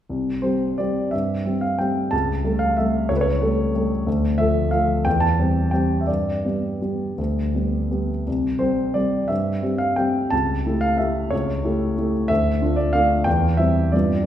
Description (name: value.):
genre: classical, piano waltz.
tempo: 160-194 BPM.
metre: 3/4.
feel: rubato.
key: C major.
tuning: A4 = 440 Hz.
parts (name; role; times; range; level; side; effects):
warm concert grand piano; solo; 0.1-14.3 s; C2 to A5; -19 LUFS; equal; none.
room: wet recital hall reverb, RT60 1.4 s.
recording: heard from further back in the room.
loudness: -19 LUFS.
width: side -10 dB against mid.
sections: 0.1-14.3 A section.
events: none.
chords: 0.1 C; 2.1 A7/C#; 4.1 Dm; 5.1 C/E; 6.1 G; 8.3 C; 10.3 A7/C#; 12.3 Dm; 13.3 C/E; 13.9 G7.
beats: | 0.10 0.44 0.79 | 1.13 1.46 1.80 | 2.12 2.44 2.77 | 3.10 3.41 3.74 | 4.07 4.39 4.72 | 5.05 5.38 5.72 | 6.08 6.44 6.81 | 7.18 7.55 7.92 | 8.27 8.61 8.96 | 9.30 9.63 9.98 | 10.32 10.65 10.99 | 11.32 11.64 11.97 | 12.30 12.61 12.94 | 13.26 13.59 13.93.